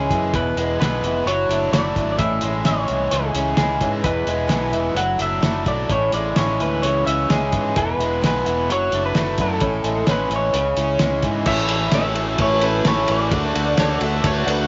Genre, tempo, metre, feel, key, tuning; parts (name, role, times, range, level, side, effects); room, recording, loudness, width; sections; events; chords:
folk rock and heartland rock; 129 BPM; 4/4; straight; A4 = 440 Hz
electric guitar through a small old amp; melody; 0.0-14.0 s; G#4 to F#5; -25 LUFS; equal
picked old ladder-braced acoustic guitar; accompaniment; 0.0-14.7 s; E2 to F#4; -28 LUFS; equal
crunchy overdriven guitar; riff; 0.0-14.7 s; E2 to F#4; -28 LUFS; equal
fingered electric bass; bass; 0.0-14.7 s; E1 to G#2; -28 LUFS; equal
cloth-damped thuddy drum kit; drums; 0.1-14.6 s; crash cymbal, hi-hat, kick drum, ride cymbal, snare drum; -25 LUFS; equal
accordion; sustained chords; 11.4-14.7 s; A3 to A4; -34 LUFS; equal
bowl-back mandolin; second line; 13.8-14.7 s; B4 to E5; -29 LUFS; equal; slapback echo
moderate echo chamber reverb, RT60 1.9 s, small room ambience; nothing above 7.7 kHz; -20 LUFS; mono
0.0-11.5 A section; 11.5-14.7 B section
0.3 E; 1.3 Dadd9/F#; 2.2 Amaj7; 3.1 C#m; 4.0 E; 5.0 Dadd9/F#; 5.9 Amaj7; 6.8 C#m; 7.8 E; 8.7 Dadd9/F#; 9.6 Amaj7; 10.5 C#m; 11.5 A; 13.3 D